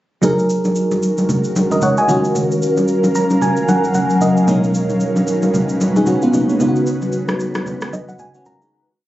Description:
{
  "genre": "amapiano",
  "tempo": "113 BPM",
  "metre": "4/4",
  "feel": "swing 58% on 16ths",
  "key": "unclear",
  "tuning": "A4 = 440 Hz",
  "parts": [
    { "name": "FM electric piano with auto-pan", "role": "accompaniment", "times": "0.2-8.9 s", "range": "B2 to Bb5", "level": "-18 LUFS", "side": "equal", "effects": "phaser" },
    { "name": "ethereal airy pad", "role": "sustained chords", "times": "0.8-8.7 s", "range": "Eb3 to F5", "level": "-18 LUFS", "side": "equal", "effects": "ensemble chorus, built-in reverb, phaser" },
    { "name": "electronic shaker and rim click", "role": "drums", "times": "0.2-8.7 s", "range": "none", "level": "-31 LUFS", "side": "equal", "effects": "none" },
    { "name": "congas", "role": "percussion", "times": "0.2-8.6 s", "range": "none", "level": "-20 LUFS", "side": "equal", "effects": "none" }
  ],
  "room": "light reverb",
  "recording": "recorded on a phone in the room, club reverb, compression, nothing above 7.9 kHz",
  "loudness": "-14 LUFS",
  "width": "side -14 dB against mid",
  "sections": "0.2-8.7 breakdown",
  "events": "FM electric piano fill 2.9-4.5, 7.7-8.7; fade-out 6.6-8.7",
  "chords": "0.2 Gb69; 2.1 Ebm9; 4.5 B69; 6.6 Db9sus4"
}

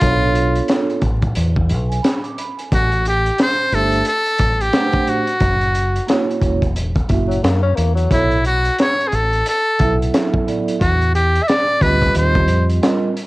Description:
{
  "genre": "hip hop, jazz-hop",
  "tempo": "89 BPM",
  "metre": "4/4",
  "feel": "swing 59% on 16ths",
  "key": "E dorian",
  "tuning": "A4 = 440 Hz",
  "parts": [
    { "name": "trumpet with metal mute", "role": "melody", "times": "0.0-12.7 s", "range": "E4 to E5", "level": "-17 LUFS", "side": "equal", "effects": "cassette tape" },
    { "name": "vibraphone with soft mallets", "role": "accompaniment", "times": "0.0-13.1 s", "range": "F#3 to D6", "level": "-21 LUFS", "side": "right 3 dB", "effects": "cassette tape" },
    { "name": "deep dub fingered electric bass", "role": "bass", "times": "0.0-12.8 s", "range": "E1 to F#2", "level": "-18 LUFS", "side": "equal", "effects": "none" },
    { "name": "crunchy breakbeat drum kit", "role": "drums", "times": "0.0-13.3 s", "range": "hi-hat, kick drum, snare drum", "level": "-20 LUFS", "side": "equal", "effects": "none" },
    { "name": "mellow tenor saxophone", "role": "second line", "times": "7.3-8.3 s", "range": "F#3 to C#4", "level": "-23 LUFS", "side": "left 5 dB", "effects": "cassette tape" }
  ],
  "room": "studio reverb",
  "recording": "home recording on cassette, vinyl crackle",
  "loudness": "-14 LUFS",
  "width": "side -20 dB against mid",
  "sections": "0.0-13.3 A section",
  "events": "none",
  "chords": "0.0 Bm7b5; 1.4 E5; 2.7 Am7; 5.4 F#7; 8.1 B7(no3); 10.8 Em7; 12.2 D#"
}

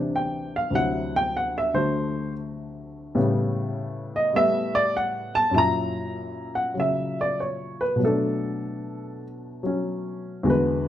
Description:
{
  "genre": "solo jazz",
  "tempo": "99 BPM",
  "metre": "4/4",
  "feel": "swing 68% on 8ths, rubato",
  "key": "unclear",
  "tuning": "A4 = 439 Hz",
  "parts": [
    { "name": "dark baby grand piano", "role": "solo", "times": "0.0-10.9 s", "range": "D2 to A#5", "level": "-23 LUFS", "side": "equal", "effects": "none" }
  ],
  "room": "moderate large studio reverb, RT60 0.9 s",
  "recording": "dark, warm production",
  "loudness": "-22 LUFS",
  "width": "side -11 dB against mid",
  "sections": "0.0-10.9 A section",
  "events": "grand piano solo 0.0-10.9",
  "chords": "0.0 D9; 3.2 A9; 5.5 F#7; 8.0 Bm7"
}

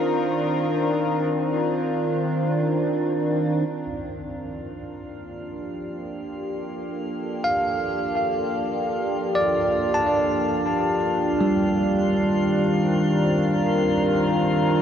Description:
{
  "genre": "ambient",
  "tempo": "free time",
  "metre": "none",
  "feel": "none",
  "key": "G minor",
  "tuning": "A4 = 440 Hz",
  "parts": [
    { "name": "evolving wavetable pad", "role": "sustained chords", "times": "0.0-14.8 s", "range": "Eb3 to Bb4", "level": "-23 LUFS", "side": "right 1 dB", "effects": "chorus, built-in reverb" },
    { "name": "drifting glass-harmonics texture", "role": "texture", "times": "4.6-14.8 s", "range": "F4 to F5", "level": "-30 LUFS", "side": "left 3 dB", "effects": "chorus, built-in reverb" },
    { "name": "bell-like tine electric piano", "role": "arpeggios", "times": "7.4-14.8 s", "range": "G3 to A5", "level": "-24 LUFS", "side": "equal", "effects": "tape echo" }
  ],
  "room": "wet huge ambient reverb, RT60 7.0 s",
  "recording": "worn, warbling old tape, cassette tape, warbly pitch drift",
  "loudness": "-20 LUFS",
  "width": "side -9 dB against mid",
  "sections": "0.0-3.7 A section; 3.7-14.8 B section",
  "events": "fade-in on ambient pad 3.7-14.8; fade-in on synth texture 3.7-14.8",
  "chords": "0.0 Cm11; 3.7 Gm9; 11.3 Cm11"
}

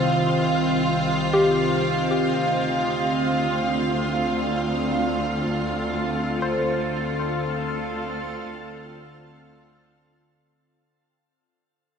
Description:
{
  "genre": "ambient",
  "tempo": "free time",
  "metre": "none",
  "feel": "none",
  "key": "unclear",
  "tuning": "A4 = 441 Hz",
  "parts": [
    { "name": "evolving wavetable pad", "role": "sustained chords", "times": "0.0-10.6 s", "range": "C3 to C5", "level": "-25 LUFS", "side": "equal", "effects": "chorus, built-in reverb" },
    { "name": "soft round pluck", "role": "arpeggios", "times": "0.0-8.8 s", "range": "F4 to C5", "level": "-27 LUFS", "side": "left 2 dB", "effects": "chorus, ping-pong delay" },
    { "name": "muted chamber cello section", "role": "bass", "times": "0.0-10.5 s", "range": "C2 to D2", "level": "-31 LUFS", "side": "equal", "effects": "none" },
    { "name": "warm studio violin section", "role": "texture", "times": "0.0-10.6 s", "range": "F4 to F5", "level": "-26 LUFS", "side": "right 2 dB", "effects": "none" }
  ],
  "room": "wet shimmer reverb, RT60 7.3 s",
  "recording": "none",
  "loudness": "-21 LUFS",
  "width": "side -7 dB against mid",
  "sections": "0.0-10.6 A section",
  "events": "fade-out 5.1-10.6",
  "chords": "0.0 Cm; 2.4 Dm7"
}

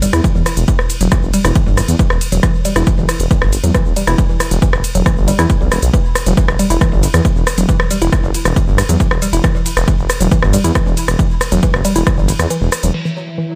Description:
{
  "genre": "driving peak-time techno",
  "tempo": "137 BPM",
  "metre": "4/4",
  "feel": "straight",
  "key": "E minor",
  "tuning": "A4 = 441 Hz",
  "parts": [
    { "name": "woody wave-folded pluck", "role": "riff", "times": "0.0-13.4 s", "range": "E3 to E4", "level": "-22 LUFS", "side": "equal", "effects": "chorus, overdrive, vintage 12-bit sampler grit, sidechain pumping, dub echo" },
    { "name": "detuned saw bass", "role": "bass", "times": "0.0-12.9 s", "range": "E1 to E2", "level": "-17 LUFS", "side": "equal", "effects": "tube saturation, sidechain pumping" },
    { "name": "techno drum kit", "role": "drums", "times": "0.0-13.0 s", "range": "crash cymbal, hi-hat, ride cymbal, rim click, shaker", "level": "-22 LUFS", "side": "equal", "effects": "low-pass filter on hats, low-pass filter on snare, low-pass filter on cymbals, low-pass filter on perc, low-pass filter on room" },
    { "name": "electronic kick drum", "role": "drums", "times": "0.2-12.2 s", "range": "none", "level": "-17 LUFS", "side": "equal", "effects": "none" },
    { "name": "overtone-sweeping drone", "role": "drone", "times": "13.1-13.6 s", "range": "E3 to E4", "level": "-28 LUFS", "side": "equal", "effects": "chorus, built-in reverb, sidechain pumping" }
  ],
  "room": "light reverb",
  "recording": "echo-heavy mix",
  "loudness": "-14 LUFS",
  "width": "mono",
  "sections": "0.0-12.9 A section",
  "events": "drop 0.0-12.9; break 12.5-12.9",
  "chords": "0.0 N.C.; 12.9 E5"
}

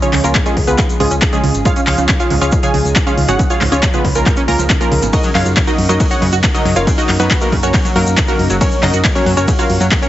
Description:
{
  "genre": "uplifting trance",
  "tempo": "138 BPM",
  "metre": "4/4",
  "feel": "straight",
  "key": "unclear",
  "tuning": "A4 = 440 Hz",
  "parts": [
    { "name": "wide unison pluck", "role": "melody", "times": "0.0-10.1 s", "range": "Ab3 to Ab5", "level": "-18 LUFS", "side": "equal", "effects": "sidechain pumping, dub echo" },
    { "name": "analog pluck", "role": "second line", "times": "0.0-10.1 s", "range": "Ab4 to Ab5", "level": "-23 LUFS", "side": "equal", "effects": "chorus, sidechain pumping, dub echo" },
    { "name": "lush unison pad", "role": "sustained chords", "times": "0.0-10.1 s", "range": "Db3 to Ab4", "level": "-23 LUFS", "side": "equal", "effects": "chorus, sidechain pumping" },
    { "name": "tight sequenced synth", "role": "arpeggios", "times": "0.0-10.0 s", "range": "Ab2 to Gb4", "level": "-22 LUFS", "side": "right 2 dB", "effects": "chorus, sidechain pumping, dub echo" },
    { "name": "big-room dance drum kit", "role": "drums", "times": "0.0-10.1 s", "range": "handclaps, hi-hat, ride cymbal", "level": "-20 LUFS", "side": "left 1 dB", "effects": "none" },
    { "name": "cabasa", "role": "percussion", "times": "0.0-10.1 s", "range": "none", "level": "-28 LUFS", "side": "left 3 dB", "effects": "none" },
    { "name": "solid FM bass", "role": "bass", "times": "0.1-9.9 s", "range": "Gb1 to Gb2", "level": "-17 LUFS", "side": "equal", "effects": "sidechain pumping" },
    { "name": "electronic kick drum", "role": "drums", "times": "0.3-10.0 s", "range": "none", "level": "-16 LUFS", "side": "equal", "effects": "overdrive" }
  ],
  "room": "light reverb, digital ambience",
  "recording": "heavily compressed radio sound, multiband compression, nothing above 7.9 kHz",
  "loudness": "-11 LUFS",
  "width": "side -13 dB against mid",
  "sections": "0.0-10.1 A section",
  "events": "none",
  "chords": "0.0 Db; 5.1 Gb6"
}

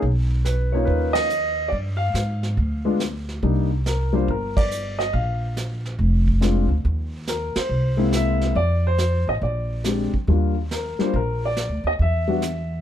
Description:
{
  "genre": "jazz piano trio",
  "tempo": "140 BPM",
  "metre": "4/4",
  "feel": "swing 67% on 8ths",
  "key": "Eb major",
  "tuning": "A4 = 440 Hz",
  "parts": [
    { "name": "upright bass", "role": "bass", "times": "0.0-12.8 s", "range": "F1 to Ab2", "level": "-22 LUFS", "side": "equal", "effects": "none" },
    { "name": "vintage brush drum kit", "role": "drums", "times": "0.0-12.8 s", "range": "brushed snare drum, hi-hat, kick drum, ride cymbal, snare drum", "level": "-28 LUFS", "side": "right 2 dB", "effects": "none" },
    { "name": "warm concert grand piano", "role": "melody", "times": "0.4-12.8 s", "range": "G3 to F5", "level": "-23 LUFS", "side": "left 2 dB", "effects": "none" }
  ],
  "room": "little or no reverb",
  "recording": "none",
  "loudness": "-20 LUFS",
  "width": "side -10 dB against mid",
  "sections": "0.0-10.3 A section; 10.3-12.8 A section",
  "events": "band accent 1.1, 4.5, 7.5",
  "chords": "0.0 Bmaj9#11; 1.7 G7(no3); 3.4 Cm9; 5.1 Bb5; 6.8 Eb5; 7.7 Caug7; 8.6 F5; 9.4 Bb13; 10.3 Ebmaj9; 12.0 N.C."
}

